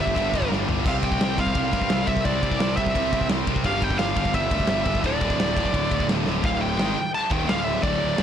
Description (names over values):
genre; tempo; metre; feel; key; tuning
heavy metal; 172 BPM; 4/4; straight; D minor; A4 = 440 Hz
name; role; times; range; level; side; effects
high-gain lead guitar; melody; 0.0-8.2 s; D5 to A5; -26 LUFS; equal; distortion
heavy high-gain guitar; riff; 0.0-8.2 s; D2 to C4; -28 LUFS; equal; distortion
overdriven semi-hollow guitar; riff; 0.0-8.2 s; D2 to C4; -30 LUFS; equal; none
fuzz picked electric bass; bass; 0.0-8.2 s; D1 to G2; -28 LUFS; equal; overdrive
big rock drum kit; drums; 0.1-8.2 s; china cymbal, crash cymbal, kick drum, ride cymbal, snare drum, toms; -25 LUFS; equal; none
room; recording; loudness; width
light reverb; blown-out, overdriven recording, overdrive; -20 LUFS; side -9 dB against mid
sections
0.0-6.4 A section; 6.4-8.2 B section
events
drum fill 0.5-0.9, 6.3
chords
0.0 G5; 0.9 C; 3.6 G5; 5.0 D5